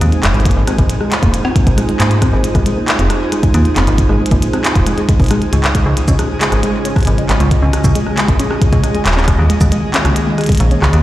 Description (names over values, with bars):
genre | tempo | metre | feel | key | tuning
IDM | 136 BPM | 4/4 | straight | Ab major | A4 = 440 Hz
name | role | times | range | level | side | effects
warbly tape-like pad | sustained chords | 0.0-11.0 s | Db3 to Eb5 | -20 LUFS | right 1 dB | chorus, built-in reverb
metallic FM bass | bass | 0.0-11.0 s | Eb1 to Ab2 | -14 LUFS | equal | none
glitchy drum kit | drums | 0.0-11.0 s | cabasa, handclaps, hi-hat, rim click | -19 LUFS | equal | digital delay
twinkling granular texture | texture | 0.0-11.0 s | Ab3 to Ab4 | -25 LUFS | left 1 dB | built-in reverb, sidechain pumping
warbly dusty pluck | arpeggios | 0.2-10.7 s | Ab2 to Db4 | -21 LUFS | left 1 dB | chorus, digital delay
electronic kick drum | drums | 0.5-10.6 s | none | -14 LUFS | equal | none
room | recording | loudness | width
light reverb, digital ambience | played on a big sound system in a bare room, large studio reverb | -11 LUFS | side -15 dB against mid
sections
0.0-11.0 A section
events
none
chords
0.0 Ab6; 5.7 Dbadd9; 9.3 Ebsus4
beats
0.01 | 0.45 0.90 1.34 1.78 | 2.22 2.66 3.10 3.54 | 3.98 4.42 4.87 5.31 | 5.75 6.19 6.63 7.07 | 7.51 7.95 8.39 8.84 | 9.28 9.72 10.16 10.60